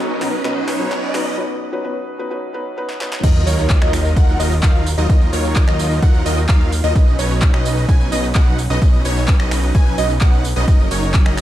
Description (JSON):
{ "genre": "EDM, festival progressive house", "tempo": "129 BPM", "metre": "4/4", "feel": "straight", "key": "Eb minor", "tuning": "A4 = 440 Hz", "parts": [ { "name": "clear studio string section", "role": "sustained chords", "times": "0.0-1.4 s", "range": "B2 to D#4", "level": "-29 LUFS", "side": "left 1 dB", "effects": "none" }, { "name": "supersaw chords", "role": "riff", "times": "0.0-11.4 s", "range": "F#3 to Ab5", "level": "-22 LUFS", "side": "right 1 dB", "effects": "sidechain pumping, low-pass filter, tape echo" }, { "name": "riser and sub drop", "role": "sound effects", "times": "0.0-5.1 s", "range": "none", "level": "-25 LUFS", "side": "equal", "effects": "none" }, { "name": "felt-muted upright piano", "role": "accompaniment", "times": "0.2-3.2 s", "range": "B2 to B4", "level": "-24 LUFS", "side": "left 1 dB", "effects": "sidechain pumping, tape echo" }, { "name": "big-room dance drum kit", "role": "drums", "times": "0.2-11.4 s", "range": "crash cymbal, finger snaps, handclaps, hi-hat, ride cymbal, snare drum, tambourine", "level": "-26 LUFS", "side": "equal", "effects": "high-pass filter on snare, high-pass filter on hats, high-pass filter on cymbals, high-pass filter on perc, high-pass filter on room" }, { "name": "plucky unison lead", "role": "arpeggios", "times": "3.2-11.4 s", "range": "Db5 to Ab5", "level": "-25 LUFS", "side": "equal", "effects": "phaser, wide subtle chorus, sidechain pumping, tape echo" }, { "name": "fat analog bass", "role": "bass", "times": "3.2-11.4 s", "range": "Gb1 to Eb2", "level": "-19 LUFS", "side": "equal", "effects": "tube saturation, sidechain pumping" }, { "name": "electronic kick drum", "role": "drums", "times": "3.2-11.2 s", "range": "none", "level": "-13 LUFS", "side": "equal", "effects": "none" } ], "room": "light reverb", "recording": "dark, warm production, high-pass filter", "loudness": "-14 LUFS", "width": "side -13 dB against mid", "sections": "0.0-3.2 A section; 3.2-11.4 B section", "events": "build-up 0.0-3.2; drum fill 0.0-1.4, 2.9-3.2; riser 0.0-1.4; break 1.4-3.2; drop 3.2-11.4; impact 3.2-5.1", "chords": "0.0 Badd9; 3.2 Ebmadd9; 7.0 Badd9; 10.7 Gb6" }